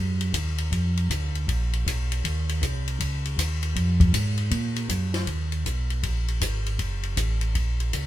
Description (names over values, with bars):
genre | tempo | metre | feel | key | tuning
soul jazz organ trio | 158 BPM | 4/4 | swing 64% on 8ths | Eb minor | A4 = 440 Hz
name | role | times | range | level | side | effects
mellow tonewheel organ | bass | 0.0-8.1 s | Gb1 to Bb2 | -25 LUFS | right 1 dB | slow rotary speaker
compact cocktail drum kit | drums | 0.2-8.1 s | hi-hat, kick drum, ride cymbal, snare drum | -28 LUFS | left 2 dB | none
room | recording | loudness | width
moderate club reverb, RT60 0.8 s | minimal, uncompressed stereo recording | -23 LUFS | side -14 dB against mid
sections
0.0-5.3 A section; 5.3-8.1 A section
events
none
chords
none